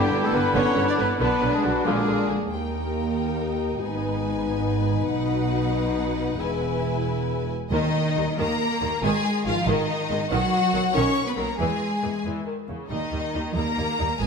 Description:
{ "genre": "cinematic", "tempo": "92 BPM (dotted quarters)", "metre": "6/8", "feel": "straight", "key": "unclear", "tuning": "A4 = 439 Hz", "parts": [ { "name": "rich studio violin section", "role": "melody", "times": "0.0-14.3 s", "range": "F#4 to Db6", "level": "-30 LUFS", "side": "left 4 dB", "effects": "none" }, { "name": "clear symphonic violin section", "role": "second line", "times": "0.0-14.3 s", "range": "D4 to Db5", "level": "-31 LUFS", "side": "left 5 dB", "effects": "none" }, { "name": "mellow oboe", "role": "second line", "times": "0.0-2.3 s", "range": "E#5 to G5", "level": "-32 LUFS", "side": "right 4 dB", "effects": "none" }, { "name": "mellow silver concert flute", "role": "second line", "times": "0.0-2.3 s", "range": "B5 to D6", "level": "-34 LUFS", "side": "left 2 dB", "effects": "none" }, { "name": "warm clarinet", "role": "second line", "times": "0.0-2.3 s", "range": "D4 to E#4", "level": "-31 LUFS", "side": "right 1 dB", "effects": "none" }, { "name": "rich symphonic viola section", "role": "accompaniment", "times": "0.0-14.3 s", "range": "Db3 to E4", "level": "-31 LUFS", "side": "equal", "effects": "none" }, { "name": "warm French horn section", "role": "sustained chords", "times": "0.0-7.5 s", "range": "D3 to G#4", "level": "-28 LUFS", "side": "left 5 dB", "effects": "none" }, { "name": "warm trumpet section", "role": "stabs", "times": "0.0-2.5 s", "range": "F#4 to D5", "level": "-28 LUFS", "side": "equal", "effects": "none" }, { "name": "rich symphonic cello section", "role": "bass", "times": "0.0-14.3 s", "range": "Eb2 to D4", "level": "-29 LUFS", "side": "right 2 dB", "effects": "none" }, { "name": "rich symphonic double bass section", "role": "bass", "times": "0.1-14.3 s", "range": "E1 to E2", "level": "-29 LUFS", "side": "right 4 dB", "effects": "none" }, { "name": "timpani", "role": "percussion", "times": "7.7-8.3 s", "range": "Eb3", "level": "-28 LUFS", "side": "equal", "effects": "none" } ], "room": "wet scoring stage reverb, RT60 1.6 s", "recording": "none", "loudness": "-22 LUFS", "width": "side -5 dB against mid", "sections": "0.0-2.5 A section; 2.5-7.7 B section; 7.7-14.3 C section", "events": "none", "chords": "0.0 G; 1.2 Bm; 1.9 A#7; 2.5 Eb; 3.8 Abm; 5.1 B; 6.4 E; 7.7 Eb; 9.0 Ab5; 10.3 B; 11.6 E; 12.9 Eb", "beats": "0.55 | 1.20 1.86 | 2.52 3.17 | 3.82 4.46 | 5.10 5.74 | 6.40 7.06 | 7.72 8.39 | 9.03 9.67 | 10.31 10.95 | 11.59 12.24 | 12.90 13.56 | 14.20" }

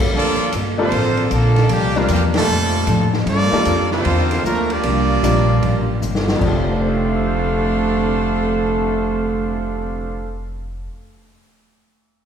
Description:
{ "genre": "jazz, big band swing", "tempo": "153 BPM", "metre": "4/4", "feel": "swing 65% on 8ths", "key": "F major", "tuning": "A4 = 439 Hz", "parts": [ { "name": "bright saxophone section", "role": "sustained chords", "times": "0.0-0.5 s", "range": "G3 to A4", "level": "-28 LUFS", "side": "left 1 dB", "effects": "none" }, { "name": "upright bass", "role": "bass", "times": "0.0-10.9 s", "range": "F1 to A2", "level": "-21 LUFS", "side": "equal", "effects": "none" }, { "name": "swinging big-band drum kit", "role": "drums", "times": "0.0-6.5 s", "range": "crash cymbal, hi-hat, kick drum, ride cymbal, snare drum", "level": "-25 LUFS", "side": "equal", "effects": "none" }, { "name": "bright trombone section", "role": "second line", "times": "0.1-10.3 s", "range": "F2 to A4", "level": "-22 LUFS", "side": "right 3 dB", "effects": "none" }, { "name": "picked steel-string acoustic guitar", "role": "accompaniment", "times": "0.1-11.0 s", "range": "C3 to A4", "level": "-26 LUFS", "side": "left 3 dB", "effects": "none" }, { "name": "brilliant trumpet section", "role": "melody", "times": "0.2-10.3 s", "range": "G3 to F5", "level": "-22 LUFS", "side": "right 1 dB", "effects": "none" }, { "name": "bright upright piano", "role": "accompaniment", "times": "0.8-11.3 s", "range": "F2 to C7", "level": "-24 LUFS", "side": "left 2 dB", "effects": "none" } ], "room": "wet scoring stage reverb, RT60 1.9 s", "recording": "heard from further back in the room", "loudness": "-15 LUFS", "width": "side -8 dB against mid", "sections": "0.1-6.4 A section; 6.4-9.5 B section", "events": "band accent 2.3; drum fill 6.0-6.4", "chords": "0.1 Gm9; 1.7 C9sus4; 3.3 Gm9; 4.8 C9sus4; 6.4 F69", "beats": "| 0.13 0.52 0.91 1.31 | 1.70 2.09 2.48 2.87 | 3.27 3.66 4.05 4.44 | 4.83 5.23 5.62 6.01 | 6.40 6.80 7.19 7.58 | 7.97 8.36 8.76 9.15" }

